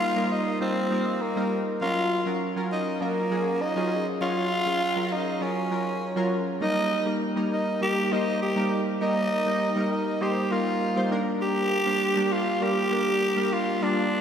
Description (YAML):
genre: pop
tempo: 100 BPM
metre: 4/4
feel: straight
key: unclear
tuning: A4 = 439 Hz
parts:
  - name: growling tenor saxophone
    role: melody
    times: 0.0-14.2 s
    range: Bb3 to G4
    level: -26 LUFS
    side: equal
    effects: none
  - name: chorused retro synth keys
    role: accompaniment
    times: 0.0-14.2 s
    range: Gb3 to Db5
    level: -26 LUFS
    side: equal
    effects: none
room: wet lush hall reverb, RT60 3.1 s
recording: dreamy mix soaked in reverb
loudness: -23 LUFS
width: side -8 dB against mid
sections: 0.0-14.2 A section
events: none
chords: 0.0 Eb; 1.8 Gbmaj7; 6.6 Eb/G; 11.1 Gm